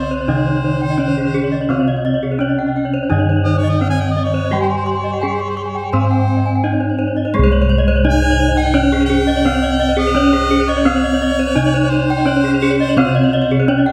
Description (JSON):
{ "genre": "Balinese gamelan", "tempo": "85 BPM", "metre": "4/4", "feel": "straight", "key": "C pelog", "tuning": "A4 = 441 Hz", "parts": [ { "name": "gamelan-type bronze metallophone", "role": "melody", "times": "0.0-13.9 s", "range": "Ab3-20c to C5", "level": "-20 LUFS", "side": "equal", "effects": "none" }, { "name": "clear harmonica", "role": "second line", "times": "0.0-13.8 s", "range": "C5 to Ab5", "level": "-26 LUFS", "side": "equal", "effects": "none" }, { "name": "gamelan-type bronze metallophone", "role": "accompaniment", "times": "0.0-7.3, 13.0-13.9 s", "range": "C3 to C4", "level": "-24 LUFS", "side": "equal", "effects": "none" }, { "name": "gamelan-type bronze metallophone", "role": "arpeggios", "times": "0.0-13.9 s", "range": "Ab4-20c to Db6+20c", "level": "-26 LUFS", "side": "equal", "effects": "slapback echo" }, { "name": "gamelan-type bossed gongs", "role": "bass", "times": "0.0-13.9 s", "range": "C2 to Ab4-20c", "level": "-21 LUFS", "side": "equal", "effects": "none" }, { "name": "gamelan-type bronze metallophone", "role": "arpeggios", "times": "0.1-13.9 s", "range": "Ab4-20c to Db6+20c", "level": "-24 LUFS", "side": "equal", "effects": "none" } ], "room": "moderate recital hall reverb, RT60 1.6 s", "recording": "none", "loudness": "-16 LUFS", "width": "mono", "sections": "0.0-7.3 A section; 7.3-13.9 A section", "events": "none", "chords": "none" }